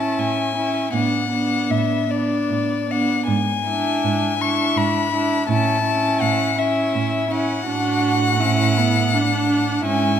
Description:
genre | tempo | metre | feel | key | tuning
classical, slow romantic movement for string quartet | 75-84 BPM | 3/4 | rubato | unclear | A4 = 436 Hz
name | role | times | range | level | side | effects
rich violin | melody | 0.0-10.2 s | D5 to C#6 | -22 LUFS | left 8 dB | none
warm violin | second line | 0.0-10.2 s | D4 to F#4 | -24 LUFS | left 1 dB | none
rich viola | accompaniment | 0.0-10.2 s | B3 to D4 | -23 LUFS | right 3 dB | none
dark cello | bass | 0.0-10.2 s | G#2 to A2 | -25 LUFS | right 5 dB | none
room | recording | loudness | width
wet recital hall reverb, RT60 1.5 s | none | -17 LUFS | side -9 dB against mid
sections
0.0-10.2 A section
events
none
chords
0.0 A; 0.9 Bm7/A; 3.3 E7/G#; 5.5 A; 7.7 Bm7/A

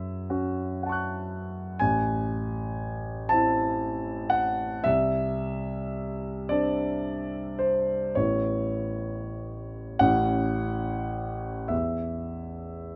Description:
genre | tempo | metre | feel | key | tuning
classical, impressionist solo piano | 28-41 BPM (dotted quarters) | 6/8 | rubato | unclear | A4 = 441 Hz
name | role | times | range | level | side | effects
warm grand piano | solo | 0.0-13.0 s | A1 to F#6 | -28 LUFS | equal | none
room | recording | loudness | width
light reverb | close, detailed microphones | -28 LUFS | mono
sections
0.0-13.0 A section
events
none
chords
0.0 F#m7; 1.8 Am; 4.9 Cadd9; 8.1 Aadd9; 10.0 A; 11.7 N.C.

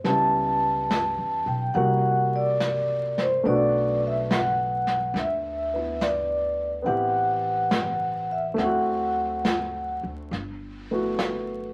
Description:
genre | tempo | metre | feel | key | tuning
jazz ballad | 70 BPM | 4/4 | swing 68% on 8ths | G major | A4 = 440 Hz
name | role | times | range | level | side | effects
warm concert grand piano | accompaniment | 0.0-11.7 s | G3 to G4 | -32 LUFS | equal | none
upright bass | bass | 0.0-11.7 s | G1 to E2 | -35 LUFS | equal | none
jazz brush drum kit | drums | 0.0-11.7 s | brushed snare drum, hi-hat, snare drum | -32 LUFS | equal | none
vibraphone with medium mallets | melody | 0.1-10.0 s | C5 to A5 | -26 LUFS | equal | none
room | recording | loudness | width
moderate studio reverb, RT60 0.8 s | vinyl crackle | -25 LUFS | mono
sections
0.0-10.3 A section; 10.3-11.7 B section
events
none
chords
0.0 C#m7b5; 1.7 C7#11; 3.4 Bm7; 6.8 Am9; 8.6 D7; 10.3 Gmaj13

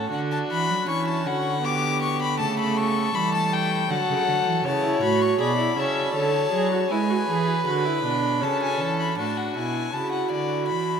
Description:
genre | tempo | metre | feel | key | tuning
classical, baroque-style fugue for string quartet | 79 BPM | 3/4 | straight | D major | A4 = 440 Hz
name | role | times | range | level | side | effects
warm violin | melody | 0.0-11.0 s | D5 to D6 | -27 LUFS | left 5 dB | none
warm violin | second line | 0.0-11.0 s | E4 to E5 | -27 LUFS | left 2 dB | none
warm viola | accompaniment | 0.0-11.0 s | E3 to A4 | -27 LUFS | right 2 dB | none
rich cello | bass | 0.0-11.0 s | A2 to G#3 | -28 LUFS | right 6 dB | none
room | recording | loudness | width
wet cathedral reverb, RT60 7.1 s | in a vast, echoing space | -21 LUFS | side -7 dB against mid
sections
0.1-9.2 A section; 9.2-11.0 B section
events
none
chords
0.1 D; 1.6 G/D; 2.4 A7/C#; 3.9 D (rootless); 4.6 A; 6.1 Dmaj7#11; 6.9 E7; 8.4 A/C#; 9.2 Bm7/A

